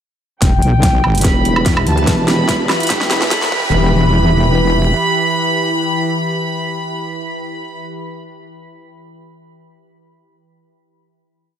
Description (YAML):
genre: heavy wobble dubstep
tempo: 145 BPM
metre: 4/4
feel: swing 53% on 16ths, half-time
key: E minor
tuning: A4 = 440 Hz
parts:
  - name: clear studio violin section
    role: melody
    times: 0.4-7.8 s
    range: G5 to B5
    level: -19 LUFS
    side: equal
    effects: low-pass filter, tape echo
  - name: lush unison pad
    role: sustained chords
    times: 0.4-7.8 s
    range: E3 to B4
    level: -20 LUFS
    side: equal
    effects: chorus, sidechain pumping
  - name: wobble bass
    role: bass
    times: 0.4-4.9 s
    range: E1 to D2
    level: -15 LUFS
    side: equal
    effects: chorus, overdrive
  - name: big-room dance drum kit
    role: drums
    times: 0.4-3.5 s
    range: hi-hat, snare drum, woodblock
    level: -20 LUFS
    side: right 1 dB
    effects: overdrive, high-pass filter on snare, small room ambience, high-pass filter on hats, high-pass filter on perc
  - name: electronic kick drum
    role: drums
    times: 0.4-3.6 s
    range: none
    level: -17 LUFS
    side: equal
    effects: overdrive, small room ambience
  - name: riser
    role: sound effects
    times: 1.9-3.7 s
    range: none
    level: -27 LUFS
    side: right 1 dB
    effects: none
  - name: vowel-sweep wobble bass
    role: bass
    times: 1.2-2.7 s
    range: E1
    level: -16 LUFS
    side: equal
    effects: chorus, overdrive
room: moderate cathedral reverb, RT60 5.0 s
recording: dreamy mix soaked in reverb, high-pass filter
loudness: -12 LUFS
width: side -9 dB against mid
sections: 0.4-3.7 build; 3.7-7.0 final hit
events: build-up 0.4-3.7; drum fill 0.4-3.7; filter sweep on analog synth pad 0.4-3.7; filter sweep on violin section 0.4-3.7; filter sweep 0.4-3.7; riser 1.9-3.7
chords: 0.4 Em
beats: | 0.42 0.83 1.25 1.66 | 2.07 2.49 2.90 3.31 | 3.73 4.14 4.55 4.97 | 5.38 5.80 6.21 6.62